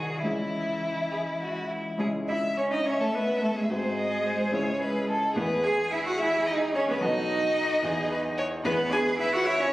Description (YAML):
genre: quick classical-period movement for piano quartet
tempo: 67-74 BPM (dotted quarters)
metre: 6/8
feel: rubato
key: C# minor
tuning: A4 = 440 Hz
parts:
  - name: rich violin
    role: melody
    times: 0.0-9.7 s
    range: E4 to G#5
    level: -30 LUFS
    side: left 2 dB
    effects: none
  - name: rich cello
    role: second line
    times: 0.0-9.7 s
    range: D#3 to G#4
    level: -28 LUFS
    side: right 1 dB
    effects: none
  - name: rich violin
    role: second line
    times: 0.0-9.7 s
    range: E4 to E5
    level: -32 LUFS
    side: equal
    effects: none
  - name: clear concert grand piano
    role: accompaniment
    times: 0.0-9.7 s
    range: B1 to A4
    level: -32 LUFS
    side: left 1 dB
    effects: none
room: wet recital hall reverb, RT60 1.7 s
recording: recorded on a phone in the room, club reverb, compression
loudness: -24 LUFS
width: side -16 dB against mid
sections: 0.0-2.0 A section; 2.0-9.7 A section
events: none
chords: 0.2 C#m; 3.7 G#7; 4.5 C#m; 5.4 E; 7.0 B7; 7.8 E